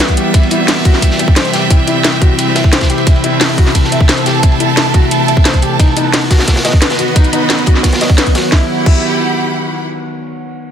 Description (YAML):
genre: dark technical drum and bass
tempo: 176 BPM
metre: 4/4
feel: straight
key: E harmonic minor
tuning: A4 = 440 Hz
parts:
  - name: metallic inharmonic drone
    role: sustained chords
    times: 0.0-8.7 s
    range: C3 to F#4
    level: -17 LUFS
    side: left 1 dB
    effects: chorus, built-in reverb, sidechain pumping
  - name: felt-muted upright piano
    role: arpeggios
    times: 0.0-9.0 s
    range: D#4 to E5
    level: -20 LUFS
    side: left 4 dB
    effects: sidechain pumping, low-pass filter, digital delay
  - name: crunchy breakbeat drum kit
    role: drums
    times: 0.0-8.4 s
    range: hi-hat, ride cymbal, snare drum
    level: -21 LUFS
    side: equal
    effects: high-pass filter on cymbals, high-pass filter on hats, high-pass filter on snare, high-pass filter on room
  - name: drum and bass drum kit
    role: drums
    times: 0.0-8.9 s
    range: crash cymbal, hi-hat, snare drum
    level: -16 LUFS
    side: equal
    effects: none
  - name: clear studio string section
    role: texture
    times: 0.0-9.8 s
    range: G3 to B5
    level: -18 LUFS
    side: right 4 dB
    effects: sidechain pumping
  - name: electronic kick drum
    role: drums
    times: 0.1-8.9 s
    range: none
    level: -10 LUFS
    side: equal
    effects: none
room: light reverb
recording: dense, heavily limited modern master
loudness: -9 LUFS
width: side -8 dB against mid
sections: 0.0-8.5 A section; 8.5-9.9 B section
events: none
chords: 0.3 C; 3.1 Am; 5.8 B; 8.5 Emadd9